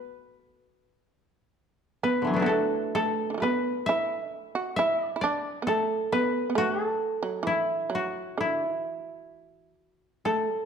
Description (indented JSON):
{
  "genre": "japanese traditional, Japanese chamber music",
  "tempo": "66 BPM",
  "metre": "2/4",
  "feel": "uneven beats, rubato",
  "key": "E suspended pentatonic",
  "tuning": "A4 = 440 Hz",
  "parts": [
    { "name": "koto", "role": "melody", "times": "0.0-10.7 s", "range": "D3 to E5", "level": "-27 LUFS", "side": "left 1 dB", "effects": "none" },
    { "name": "shamisen", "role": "second line", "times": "0.0-10.7 s", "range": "D3 to F#4", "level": "-30 LUFS", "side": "right 5 dB", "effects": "none" }
  ],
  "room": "moderate recital hall reverb, RT60 1.4 s",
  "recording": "dark, warm production",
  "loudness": "-25 LUFS",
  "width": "side -7 dB against mid",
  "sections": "0.0-10.2 A section",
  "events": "none",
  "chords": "none",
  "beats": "0.24 | 1.12 2.03 | 2.96 3.88 | 4.78 5.67 | 6.56 7.45 | 8.37 9.31 | 10.25"
}